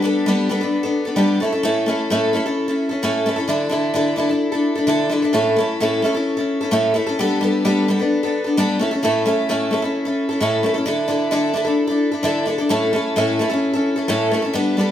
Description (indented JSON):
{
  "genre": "rock",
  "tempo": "130 BPM",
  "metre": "4/4",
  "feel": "straight",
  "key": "A mixolydian",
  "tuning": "A4 = 440 Hz",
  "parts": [
    { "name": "picked twelve-string acoustic guitar", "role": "solo", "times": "0.0-14.9 s", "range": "A2 to A4", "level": "-17 LUFS", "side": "left 1 dB", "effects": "none" }
  ],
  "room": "wet large studio reverb, RT60 0.9 s",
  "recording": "band playing live in one room",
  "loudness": "-17 LUFS",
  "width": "side -10 dB against mid",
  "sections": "0.0-3.5 A section; 3.5-14.9 A section",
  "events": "none",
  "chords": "0.0 Gadd9; 1.4 A; 3.5 Dsus2; 5.3 A; 7.2 Gadd9; 8.8 A; 10.9 Dsus2; 12.7 A",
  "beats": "0.27 0.73 1.19 | 1.65 2.11 2.57 3.04 | 3.50 3.96 4.42 4.88 | 5.34 5.80 6.26 6.72 | 7.19 7.65 8.11 8.57 | 9.03 9.49 9.95 10.41 | 10.87 11.33 11.79 12.25 | 12.71 13.17 13.63 14.09 | 14.55"
}